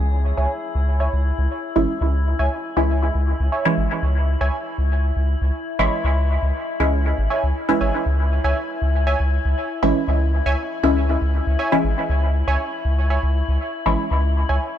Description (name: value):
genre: dub techno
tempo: 119 BPM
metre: 4/4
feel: straight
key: C# minor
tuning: A4 = 440 Hz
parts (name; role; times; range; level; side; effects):
- round analog bass; bass; 0.0-14.6 s; G#1 to C#2; -19 LUFS; equal; tube saturation
- drifting glass-harmonics texture; texture; 0.0-14.8 s; E4; -29 LUFS; left 5 dB; chorus, built-in reverb
- filtered dub chord stab; riff; 0.4-14.6 s; C#5 to G#5; -28 LUFS; right 3 dB; chorus, dub echo
- filtered dub chord stab; stabs; 1.8-14.1 s; E3 to E4; -23 LUFS; equal; phaser, dub echo
room: light reverb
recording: dry, gritty hardware recording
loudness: -18 LUFS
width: side -10 dB against mid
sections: 0.0-14.8 A section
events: none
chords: 0.0 C#m